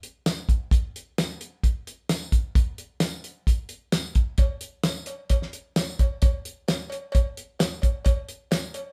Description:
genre	rock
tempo	131 BPM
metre	4/4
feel	straight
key	none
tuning	none
part	damped 70s drum kit	drums	0.0-8.8 s	hi-hat, kick drum, snare drum, tambourine	-25 LUFS	equal	none
part	cowbell	percussion	4.4-8.8 s	none	-38 LUFS	equal	none
room	light reverb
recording	band playing live in one room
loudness	-26 LUFS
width	mono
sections	0.0-8.9 A section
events	none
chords	none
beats	0.25 | 0.71 1.17 1.63 2.09 | 2.55 3.01 3.47 3.93 | 4.38 4.84 5.30 5.76 | 6.22 6.67 7.13 7.59 | 8.05 8.51

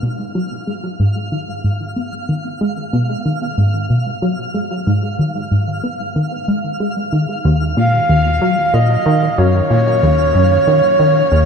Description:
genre	ambient, sequencer-driven space music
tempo	93 BPM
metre	4/4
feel	straight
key	unclear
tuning	A4 = 440 Hz
part	plucky analog bass	riff	0.0-11.5 s	Eb2 to Cb4	-16 LUFS	equal	lush chorus, tape echo
part	twinkling granular texture	texture	0.0-11.5 s	F5	-27 LUFS	right 1 dB	built-in reverb
part	breathy flute-like synth lead	melody	7.8-11.5 s	Db5 to F5	-14 LUFS	right 1 dB	chorus, tape echo
room	wet huge ambient reverb, RT60 8.1 s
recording	dark, warm production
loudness	-14 LUFS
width	side -6 dB against mid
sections	0.0-11.5 A section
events	fade-in on synth texture 0.0-11.5; filter sweep on analog synth bass 0.0-11.5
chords	0.0 Abm; 7.4 Ebm7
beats	0.35 0.99 1.64 | 2.28 2.93 3.58 4.22 | 4.87 5.51 6.16 6.80 | 7.45 8.09 8.74 9.38 | 10.03 10.67 11.32

